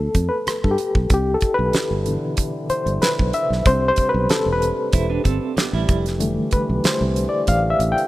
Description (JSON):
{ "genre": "lush 1970s-style soul", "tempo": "94 BPM", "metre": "4/4", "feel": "swing 54% on 16ths", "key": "C major", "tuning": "A4 = 440 Hz", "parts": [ { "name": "barky reed electric piano", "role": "accompaniment", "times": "0.0-8.1 s", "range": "B2 to G5", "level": "-21 LUFS", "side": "left 2 dB", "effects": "overdrive, fast tremolo" }, { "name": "fingered electric bass", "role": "bass", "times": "0.0-7.9 s", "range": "E1 to G2", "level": "-22 LUFS", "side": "equal", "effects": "none" }, { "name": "damped 70s drum kit", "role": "drums", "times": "0.1-8.1 s", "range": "hi-hat, kick drum, rim click, snare drum", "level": "-21 LUFS", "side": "right 1 dB", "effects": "none" }, { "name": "mellow French horn section", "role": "sustained chords", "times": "1.1-8.1 s", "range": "C3 to G4", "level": "-30 LUFS", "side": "equal", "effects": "none" }, { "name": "clean electric guitar", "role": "riff", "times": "4.9-6.0 s", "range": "G3 to C5", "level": "-26 LUFS", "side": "right 7 dB", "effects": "tremolo" } ], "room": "light reverb, small room reverb", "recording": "rough home demo mix", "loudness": "-17 LUFS", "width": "side -16 dB against mid", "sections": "0.0-8.1 A section", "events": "reed electric piano solo 0.0-8.1", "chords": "0.0 G9; 1.1 Cmaj9; 3.7 Am9; 5.9 Fmaj13" }